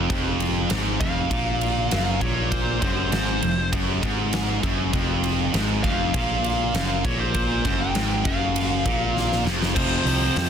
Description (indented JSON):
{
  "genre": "hard rock",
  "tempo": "99 BPM",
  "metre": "4/4",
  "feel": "straight",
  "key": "F minor",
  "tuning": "A4 = 440 Hz",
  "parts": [
    { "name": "heavy high-gain guitar", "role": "riff", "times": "0.0-10.5 s", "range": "F2 to F3", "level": "-26 LUFS", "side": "right 12 dB", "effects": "distortion" },
    { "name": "high-gain distorted guitar", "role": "riff", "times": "0.0-10.5 s", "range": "F2 to F3", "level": "-28 LUFS", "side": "left 12 dB", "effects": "distortion" },
    { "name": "picked electric bass", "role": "bass", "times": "0.0-10.5 s", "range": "F1 to F2", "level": "-27 LUFS", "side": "equal", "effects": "none" },
    { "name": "huge arena drum kit", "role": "drums", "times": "0.1-10.5 s", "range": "crash cymbal, hi-hat, kick drum, ride cymbal, snare drum", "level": "-26 LUFS", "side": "equal", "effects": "none" },
    { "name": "smooth overdriven lead guitar", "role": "melody", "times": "1.0-10.5 s", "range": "C5 to G5", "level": "-28 LUFS", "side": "left 1 dB", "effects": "slapback echo" },
    { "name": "hollow soft pad", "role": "sustained chords", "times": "9.8-10.5 s", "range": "F4 to G5", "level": "-37 LUFS", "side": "equal", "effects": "none" }
  ],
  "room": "light reverb, small room ambience",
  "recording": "dense, heavily limited modern master",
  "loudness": "-20 LUFS",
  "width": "side -8 dB against mid",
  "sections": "0.0-9.8 A section",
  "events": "drum fill 9.2-9.8",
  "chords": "0.0 Fm; 9.8 F5"
}